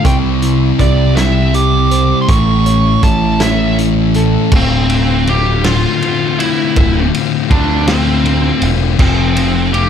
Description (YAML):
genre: quiet-loud alternative rock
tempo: 54 BPM (dotted quarters)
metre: 6/8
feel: straight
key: D minor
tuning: A4 = 440 Hz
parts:
  - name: biting lead guitar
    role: melody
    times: 0.0-9.9 s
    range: C4 to D6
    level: -17 LUFS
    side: right 3 dB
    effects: overdrive, slapback echo
  - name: fingerpicked plugged-in steel-string acoustic guitar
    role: arpeggios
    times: 0.0-4.5 s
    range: A2 to C5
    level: -22 LUFS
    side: left 4 dB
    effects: slapback echo
  - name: thick fuzz guitar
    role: riff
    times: 0.0-9.9 s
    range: D2 to C5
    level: -16 LUFS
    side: left 12 dB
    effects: distortion
  - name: thick fuzz guitar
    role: riff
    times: 0.0-4.5 s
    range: A2 to C4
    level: -17 LUFS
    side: right 15 dB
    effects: distortion
  - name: growling picked electric bass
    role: bass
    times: 0.0-9.9 s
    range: D1 to D2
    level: -15 LUFS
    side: right 1 dB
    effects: overdrive
  - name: loose indie drum kit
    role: drums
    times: 0.0-9.9 s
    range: crash cymbal, hi-hat, kick drum, ride cymbal, snare drum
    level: -17 LUFS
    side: right 1 dB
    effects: none
room: little or no reverb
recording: none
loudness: -10 LUFS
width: side -8 dB against mid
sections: 0.0-4.5 A section; 4.5-9.9 B section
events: lead electric guitar solo 0.0-4.5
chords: 0.1 C; 2.3 A; 4.5 Dm7; 9.0 F